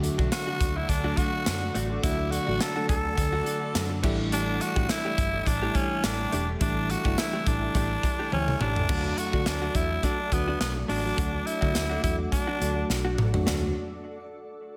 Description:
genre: 1980s-style pop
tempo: 105 BPM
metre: 4/4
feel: swing 55% on 16ths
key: D major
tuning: A4 = 438 Hz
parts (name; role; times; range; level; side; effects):
- FM electric piano; accompaniment; 0.0-13.7 s; D3 to A4; -35 LUFS; equal; none
- biting overdriven guitar; accompaniment; 0.0-9.4 s; A2 to D4; -43 LUFS; equal; none
- granular cloud pad; sustained chords; 0.0-13.7 s; A4 to D6; -43 LUFS; equal; built-in reverb
- direct-recorded clean electric guitar; riff; 0.0-13.7 s; A3 to G4; -39 LUFS; equal; subtle chorus, tape echo
- vintage muted fingered electric bass; bass; 0.0-13.7 s; E1 to D3; -34 LUFS; equal; none
- modern studio drum kit; drums; 0.0-13.6 s; crash cymbal, hi-hat, kick drum, snare drum, tambourine, toms; -31 LUFS; equal; none
- raspy tenor saxophone; melody; 0.3-12.9 s; B3 to A4; -32 LUFS; equal; slapback echo
room: moderate lush hall reverb, RT60 1.6 s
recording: big arena sound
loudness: -27 LUFS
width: mono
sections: 0.0-8.9 A section; 8.9-13.5 B section; 13.5-14.8 C section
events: drum fill 8.3-8.9, 12.9-13.5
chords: 0.0 D; 4.0 A7sus4; 8.9 D

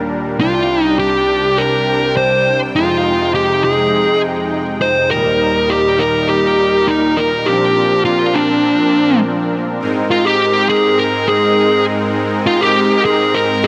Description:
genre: synthwave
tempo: 102 BPM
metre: 4/4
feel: straight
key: unclear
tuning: A4 = 440 Hz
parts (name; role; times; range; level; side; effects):
- soft supersaw; sustained chords; 0.0-13.7 s; C2 to G5; -20 LUFS; equal; none
- fuzz lead guitar; melody; 0.4-13.7 s; D4 to C5; -16 LUFS; equal; distortion, digital delay
room: moderate lush hall reverb, RT60 2.4 s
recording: none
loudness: -14 LUFS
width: mono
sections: 0.0-9.8 A section; 9.8-13.7 B section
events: break 9.2-9.8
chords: 0.4 Csus2; 2.8 Fm7; 5.1 Eb; 7.5 Bbadd9; 9.8 Abadd9

